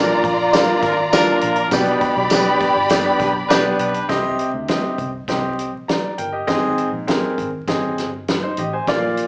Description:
uptempo 1960s-style soul; 101 BPM; 4/4; straight; C minor; A4 = 440 Hz
warm studio violin section; second line; 0.0-4.1 s; F4 to B5; -21 LUFS; equal
clear baby grand piano; accompaniment; 0.0-9.3 s; Ab2 to Bb5; -22 LUFS; equal
vintage muted fingered electric bass; bass; 0.0-9.2 s; G1 to D2; -33 LUFS; equal
natural country drum kit; drums; 0.2-9.3 s; hi-hat, kick drum, snare drum; -25 LUFS; equal
tambourine; percussion; 0.5-3.6 s; -31 LUFS; equal
bright horn section; second line; 0.8-4.1 s; D4 to B4; -24 LUFS; equal; slapback echo
light reverb; live gig heard through the venue's PA, club reverb, vinyl crackle, small speaker sound; -19 LUFS; mono
0.0-4.1 A section; 4.1-9.3 B section
0.0 Bb; 1.7 G; 4.1 Cm; 6.5 Ab
0.54 1.13 | 1.72 2.31 2.91 3.50 | 4.10 4.69 5.29 5.89 | 6.48 7.08 7.68 8.28 | 8.87

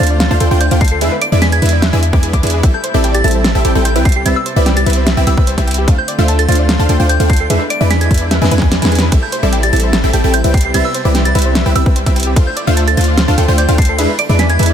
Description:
future bass; 148 BPM; 4/4; half-time; A minor; A4 = 440 Hz
soft synth bell; melody; 0.0-14.7 s; E6 to D7; -21 LUFS; right 2 dB; chorus, phaser, sidechain pumping, dub echo
dark chamber string section; sustained chords; 0.0-14.7 s; C3 to F4; -28 LUFS; equal
soft round pluck; arpeggios; 0.0-14.7 s; G4 to D6; -23 LUFS; left 3 dB; chorus, sidechain pumping, ping-pong delay
supersaw stab; riff; 0.0-14.7 s; G3 to G#5; -16 LUFS; right 1 dB; sidechain pumping, ping-pong delay
warm 808-style bass; bass; 0.0-14.7 s; A1 to E2; -14 LUFS; equal; sidechain pumping
pop drum kit; drums; 0.0-14.7 s; hi-hat, ride cymbal, snare drum; -18 LUFS; right 1 dB; overdrive
electronic kick drum; drums; 0.8-13.9 s; -12 LUFS; equal
little or no reverb; dense, heavily limited modern master; -10 LUFS; side -9 dB against mid
0.0-14.7 A section
drum fill 8.3-9.1; kick drops out 8.7-9.1
0.0 Dm7; 1.0 E7; 2.6 Am7; 4.1 Cmaj7; 5.9 Dm7; 7.5 E7; 9.1 Am7; 10.5 Cmaj7; 12.4 Dm7; 14.0 E7
0.20 0.61 | 1.01 1.42 1.82 2.23 | 2.63 3.04 3.44 3.85 | 4.26 4.66 5.07 5.47 | 5.88 6.28 6.69 7.09 | 7.50 7.91 8.31 8.71 | 9.12 9.53 9.93 10.34 | 10.74 11.15 11.55 11.96 | 12.36 12.77 13.18 13.58 | 13.99 14.39

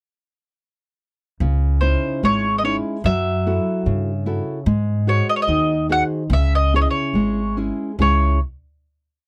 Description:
fado-style ballad; 73 BPM; 2/4; rubato; C# harmonic minor; A4 = 441 Hz
nylon-string guitar; accompaniment; 1.4-8.4 s; C#3 to B#4; -25 LUFS; equal
upright bass; bass; 1.4-8.4 s; G#1 to G#2; -22 LUFS; equal
bowl-back mandolin; melody; 1.8-8.4 s; B#4 to F#5; -23 LUFS; equal
light reverb; dry, close 1970s-style studio recording; -20 LUFS; mono
1.4-8.0 A section; 8.0-9.3 final chord
1.4 C#madd9; 3.0 F#m7; 4.7 G#7; 6.3 C#m
| 1.40 2.23 | 3.04 3.86 | 4.67 5.48 | 6.30 7.14 | 7.99

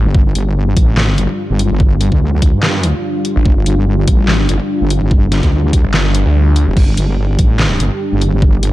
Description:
heavy wobble dubstep; 145 BPM; 4/4; swing 54% on 16ths, half-time; A4 = 440 Hz
lush unison pad; sustained chords; 0.0-8.7 s; G3 to G4; -20 LUFS; equal; chorus, phaser, sidechain pumping
snarling distorted saw bass; bass; 0.0, 3.4-6.7 s; G1 to D2; -11 LUFS; equal; overdrive
wobble bass; bass; 0.1-8.7 s; F1 to G2; -14 LUFS; equal; chorus, overdrive
electronic kick drum; drums; 0.1-8.5 s; -11 LUFS; equal; overdrive
dubstep drum kit; drums; 0.4-8.7 s; crash cymbal, handclaps, hi-hat, snare drum; -19 LUFS; equal
little or no reverb; dark, warm production; -11 LUFS; side -16 dB against mid
0.0-8.7 A section
kick drops out 6.4-6.8
0.0 G5
| 0.14 0.56 0.97 1.39 | 1.80 2.21 2.63 3.04 | 3.46 3.87 4.28 4.70 | 5.11 5.53 5.94 6.35 | 6.77 7.18 7.59 8.01 | 8.42

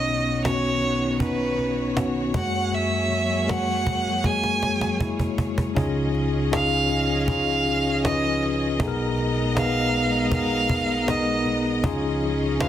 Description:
pop ballad; 79 BPM; 4/4; straight; A4 = 439 Hz
rich violin; melody; 0.0-12.7 s; B4 to G#5; -25 LUFS; right 2 dB
tine electric piano; accompaniment; 0.0-12.7 s; B1 to B4; -24 LUFS; left 1 dB; fast stereo tremolo
clear studio string section; sustained chords; 0.0-12.7 s; B2 to A#5; -31 LUFS; equal
cajon; drums; 0.1-12.7 s; -26 LUFS; right 1 dB
light reverb, studio reverb; dense, heavily limited modern master; -21 LUFS; side -11 dB against mid
0.0-5.8 A section; 5.8-12.7 B section
drum fill 4.2-5.8
0.0 Badd9; 2.3 F#add9; 5.8 C#add9; 8.8 G#madd9/B; 11.8 C#add9
0.45 1.20 1.96 | 2.72 3.48 4.24 5.00 | 5.76 6.52 7.28 8.04 | 8.80 9.56 10.32 11.08 | 11.84 12.60

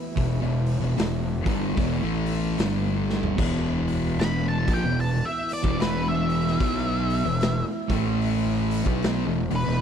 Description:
stoner and doom metal; 75 BPM; 4/4; swing 61% on 8ths; E minor; A4 = 440 Hz
analog drone; sustained chords; 0.0-9.8 s; E3 to B4; -38 LUFS; right 2 dB; chorus
thick fuzz guitar; riff; 0.2-9.8 s; E2 to B3; -27 LUFS; left 12 dB; distortion
thick fuzz guitar; riff; 0.2-9.8 s; E2 to B3; -28 LUFS; right 10 dB; distortion
fuzz fingered electric bass; bass; 0.2-9.8 s; E1 to B1; -29 LUFS; equal; overdrive
raw garage drum kit; drums; 0.2-9.8 s; crash cymbal, hi-hat, kick drum, snare drum, toms; -29 LUFS; equal
octave-fuzz lead guitar; melody; 4.2-9.8 s; B4 to B5; -30 LUFS; equal; distortion, tape echo
little or no reverb; -22 LUFS; side -8 dB against mid
0.0-3.4 A section; 3.4-9.8 B section
drum fill 3.0-3.4; lead electric guitar solo 3.4-9.8
0.0 Em; 2.6 G5; 3.4 E5; 7.8 A5; 8.8 E5
| 0.17 0.97 1.78 2.58 | 3.39 4.19 5.00 5.80 | 6.61 7.41 8.21 9.02

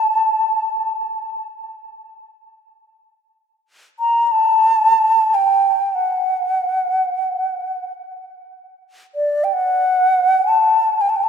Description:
world meditative, free-time meditation music; free time; A4 = 440 Hz
bright reedy low xiao; solo; 0.0-11.3 s; D5 to Bb5; -15 LUFS; equal; ping-pong delay
wet concert hall reverb, RT60 2.1 s; -15 LUFS; side -7 dB against mid
0.0-11.3 A section
free time

